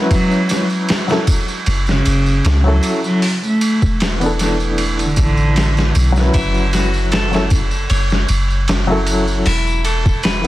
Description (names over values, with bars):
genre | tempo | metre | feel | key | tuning
trip hop | 77 BPM | 4/4 | swing 54% on 16ths | F# minor | A4 = 440 Hz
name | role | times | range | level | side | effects
warm upright piano | accompaniment | 0.0-10.5 s | E3 to B4 | -20 LUFS | left 1 dB | tremolo, tape echo
rich cello | melody | 0.1-6.2 s | C#3 to A3 | -20 LUFS | equal | vintage 12-bit sampler grit, dub echo
dusty soul sampler-style drum kit | drums | 0.1-10.5 s | hi-hat, kick drum, ride cymbal, snare drum | -19 LUFS | equal | overdrive
tambourine | percussion | 0.1-10.5 s | none | -30 LUFS | right 2 dB | none
soft 808-style bass | bass | 1.7-10.5 s | E1 to C#2 | -17 LUFS | equal | none
clean electric guitar | arpeggios | 6.3-10.5 s | E4 to C#5 | -23 LUFS | left 2 dB | tape echo
room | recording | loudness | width
digital ambience | dense, heavily limited modern master, vinyl crackle | -13 LUFS | side -16 dB against mid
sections
0.0-10.5 A section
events
none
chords
0.1 F#m7; 3.2 E7sus4; 6.3 F#m7; 9.5 Esus4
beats
| 0.11 0.89 1.67 2.44 | 3.22 4.00 4.78 5.56 | 6.34 7.12 7.90 8.68 | 9.46 10.24